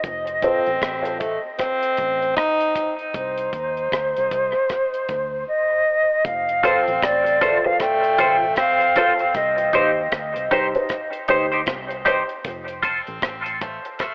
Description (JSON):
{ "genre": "dub reggae", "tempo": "77 BPM", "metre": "4/4", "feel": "swing 61% on 16ths", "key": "unclear", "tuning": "A4 = 440 Hz", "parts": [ { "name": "vintage muted fingered electric bass", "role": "bass", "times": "0.0-13.8 s", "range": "F1 to Eb2", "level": "-41 LUFS", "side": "equal", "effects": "none" }, { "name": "deep reggae drum kit", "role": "drums", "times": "0.0-14.1 s", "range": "hi-hat, kick drum, rim click", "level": "-30 LUFS", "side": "equal", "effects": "dub echo" }, { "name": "clear tenor saxophone", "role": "second line", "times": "0.4-14.1 s", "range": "A3 to Eb4", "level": "-27 LUFS", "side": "equal", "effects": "high-pass filter, dub echo" }, { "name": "dark upright piano", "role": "stabs", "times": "0.4-0.7, 6.6-14.0 s", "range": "Eb4 to C5", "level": "-29 LUFS", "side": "equal", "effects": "high-pass filter, dub echo" }, { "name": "mellow silver concert flute", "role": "melody", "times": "3.2-10.1 s", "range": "C5 to G5", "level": "-24 LUFS", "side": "equal", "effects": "dub echo" }, { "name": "clean electric guitar", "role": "accompaniment", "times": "6.6-13.0 s", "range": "Eb4 to C5", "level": "-26 LUFS", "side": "equal", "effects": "analog chorus, high-pass filter, dub echo" } ], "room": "moderate spring reverb, RT60 2.6 s", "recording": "telephone sound", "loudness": "-21 LUFS", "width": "mono", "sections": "0.0-6.2 A section; 6.2-14.1 A section", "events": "break 0.0-6.2, 9.3-14.1", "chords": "0.0 F; 3.1 Cm; 6.2 F; 9.3 Cm; 12.5 F" }